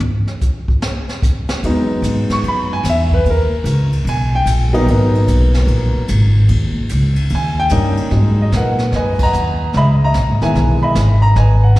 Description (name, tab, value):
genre	jazz piano trio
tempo	148 BPM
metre	4/4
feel	swing 66% on 8ths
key	G# minor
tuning	A4 = 440 Hz
part	jazz brush drum kit	drums	0.0-11.8 s	brushed snare drum, crash cymbal, hi-hat, kick drum, ride cymbal, snare drum, toms	-22 LUFS	equal	none
part	warm grand piano	melody	1.6-11.8 s	D#3 to C#6	-17 LUFS	equal	slapback echo
part	upright bass	bass	1.6-11.8 s	E1 to A#2	-14 LUFS	equal	none
room	light reverb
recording	live gig heard through the venue's PA, recital hall reverb, lossy compression artefacts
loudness	-12 LUFS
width	side -17 dB against mid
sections	0.0-8.1 A section; 8.1-11.8 B section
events	grand piano solo 0.0-8.1; drum solo 0.0-1.6; band accent 9.1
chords	0.0 N.C.; 1.6 Emaj7; 3.3 D#5; 4.9 G#m9; 6.5 D#7; 8.1 G#m9; 9.7 C#m9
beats	| 0.01 0.42 0.82 1.23 | 1.63 2.04 2.44 2.85 | 3.25 3.66 4.06 4.47 | 4.87 5.28 5.68 6.09 | 6.49 6.90 7.30 7.71 | 8.12 8.52 8.93 9.33 | 9.74 10.14 10.55 10.96 | 11.36 11.77